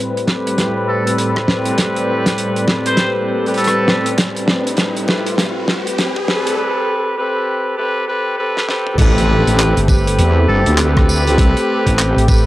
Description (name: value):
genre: glitch hop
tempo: 100 BPM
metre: 4/4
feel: swing 62% on 16ths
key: A minor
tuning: A4 = 440 Hz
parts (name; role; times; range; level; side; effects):
- warm analog pad; sustained chords; 0.0-12.5 s; A2 to B4; -20 LUFS; equal; chorus, tremolo, vintage 12-bit sampler grit, sidechain pumping, cassette tape
- riser and impact; sound effects; 3.1-11.4 s; none; -26 LUFS; equal; none
- damped 70s drum kit; drums; 0.2-12.5 s; crash cymbal, handclaps, hi-hat, rim click, snare drum, tambourine, toms; -19 LUFS; equal; none
- warm horn section; stabs; 0.3-12.5 s; C4 to B4; -19 LUFS; equal; vintage 12-bit sampler grit, sidechain pumping, low-pass filter, cassette tape, tape echo
- electronic kick drum; drums; 0.3-12.4 s; none; -15 LUFS; equal; high-pass filter on kick
- clear trumpet; melody; 0.9-4.1, 10.5-10.7 s; A4 to C5; -22 LUFS; equal; low-pass filter, cassette tape, tape echo
- wobble bass; bass; 9.0-12.1 s; G1 to E2; -14 LUFS; equal; chorus
- fingered electric bass; bass; 9.8-12.5 s; G1 to A1; -16 LUFS; equal; tube saturation
room: moderate spring reverb, RT60 2.0 s, studio ambience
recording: home recording on cassette, high-pass filter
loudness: -13 LUFS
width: side -16 dB against mid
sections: 0.0-9.0 A section; 9.0-12.5 B section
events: build-up 0.0-9.0; drum fill 0.0-6.6, 8.5-9.0; riser 3.1-6.6; drop 9.0-12.5; impact 9.0-11.4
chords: 0.0 Am9